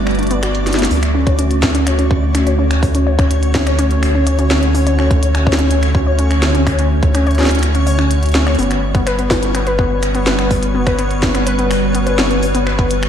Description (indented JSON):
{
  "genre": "IDM",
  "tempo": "125 BPM",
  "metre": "4/4",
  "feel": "straight",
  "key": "D major",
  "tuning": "A4 = 440 Hz",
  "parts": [
    { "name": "hollow soft pad", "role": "sustained chords", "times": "0.0-13.1 s", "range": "D3 to C#5", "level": "-21 LUFS", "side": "right 1 dB", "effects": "ensemble chorus" },
    { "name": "round analog bass", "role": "bass", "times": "0.0-13.1 s", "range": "G1 to D2", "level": "-16 LUFS", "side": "equal", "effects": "tube saturation" },
    { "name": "backwards swelling texture", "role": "texture", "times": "0.0-13.1 s", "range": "C#4 to D5", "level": "-27 LUFS", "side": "right 1 dB", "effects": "built-in reverb" },
    { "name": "glitchy drum kit", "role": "drums", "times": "0.1-13.1 s", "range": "finger snaps, hi-hat, snare drum", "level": "-20 LUFS", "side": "equal", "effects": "none" },
    { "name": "warbly dusty pluck", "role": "arpeggios", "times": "0.2-12.9 s", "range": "B3 to C#5", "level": "-19 LUFS", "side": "left 2 dB", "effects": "chorus, tape echo, slapback echo" },
    { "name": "electronic kick drum", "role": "drums", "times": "1.3-12.9 s", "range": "none", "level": "-19 LUFS", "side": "equal", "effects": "none" }
  ],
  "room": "moderate lush hall reverb, RT60 2.0 s",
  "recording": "big arena sound, lossy compression artefacts",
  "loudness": "-12 LUFS",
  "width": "side -9 dB against mid",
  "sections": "0.9-13.1 A section",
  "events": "break 0.0-0.9; drum fill 0.7",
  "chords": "0.0 Gmaj7; 0.9 Dmaj7; 8.6 Gmaj7",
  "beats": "0.43 | 0.91 1.39 1.87 2.35 | 2.83 3.31 3.79 4.27 | 4.75 5.23 5.71 6.19 | 6.67 7.15 7.63 8.11 | 8.59 9.07 9.55 10.03 | 10.51 10.99 11.47 11.95 | 12.43 12.91"
}